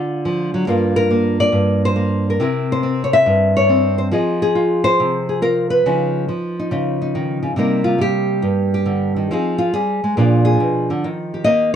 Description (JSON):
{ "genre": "solo jazz", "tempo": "139 BPM", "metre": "4/4", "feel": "swing 67% on 8ths", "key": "C minor", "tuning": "A4 = 440 Hz", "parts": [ { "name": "nylon-string guitar", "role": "solo", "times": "0.0-11.8 s", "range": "G2 to E5", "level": "-15 LUFS", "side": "equal", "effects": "none" } ], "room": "light reverb", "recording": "dark, warm production", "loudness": "-15 LUFS", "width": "side -8 dB against mid", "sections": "0.0-7.6 A section; 7.6-11.8 B section", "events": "nylon-string guitar solo 7.6-11.8", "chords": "0.0 Dm; 0.7 Gm7; 2.4 C7b9; 4.1 Fm7; 5.8 Db9; 7.6 Cm7; 9.3 Fm7; 10.2 Bb7b9; 11.0 Ebadd9" }